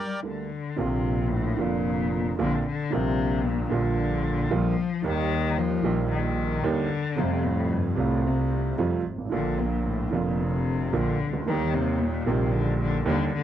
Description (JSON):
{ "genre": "tango", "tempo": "112 BPM", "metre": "4/4", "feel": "rubato", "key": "Bb major", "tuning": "A4 = 442 Hz", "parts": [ { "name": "dark cello", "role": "second line", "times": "0.0-13.4 s", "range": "G2 to G3", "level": "-28 LUFS", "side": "left 6 dB", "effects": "none" }, { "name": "warm upright piano", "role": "accompaniment", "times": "0.2-13.4 s", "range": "F1 to A4", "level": "-27 LUFS", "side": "right 5 dB", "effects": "none" }, { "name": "clear double bass", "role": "bass", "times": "0.8-13.4 s", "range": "F1 to F2", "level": "-29 LUFS", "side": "equal", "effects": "none" } ], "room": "light reverb", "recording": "dry, close 1970s-style studio recording", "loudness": "-23 LUFS", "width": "side -10 dB against mid", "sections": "0.8-13.4 A section", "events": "break 0.0-0.8; cello solo 0.8-13.4", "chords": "0.0 Gmadd9; 0.8 Bbadd9; 2.9 Gm7/Bb; 5.0 Eb; 7.2 Fadd9; 9.3 Bb; 11.5 Eb" }